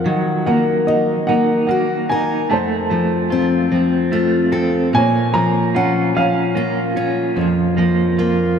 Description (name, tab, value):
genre	acoustic folk-pop ballad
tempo	49 BPM (dotted quarters)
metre	6/8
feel	straight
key	unclear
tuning	A4 = 440 Hz
part	dark upright piano	melody	0.0-8.6 s	Bb4 to Bb5	-22 LUFS	right 2 dB	none
part	fingerpicked steel-string acoustic guitar	accompaniment	0.0-8.6 s	F2 to Bb4	-17 LUFS	left 2 dB	none
part	electric guitar at the edge of break-up	arpeggios	0.1-8.6 s	F3 to F4	-21 LUFS	right 5 dB	tremolo
room	wet cathedral reverb, RT60 5.5 s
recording	in a vast, echoing space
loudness	-15 LUFS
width	side -7 dB against mid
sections	0.0-8.6 A section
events	none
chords	0.1 Ebmadd9; 2.5 F; 4.9 Bbm; 7.4 Fsus4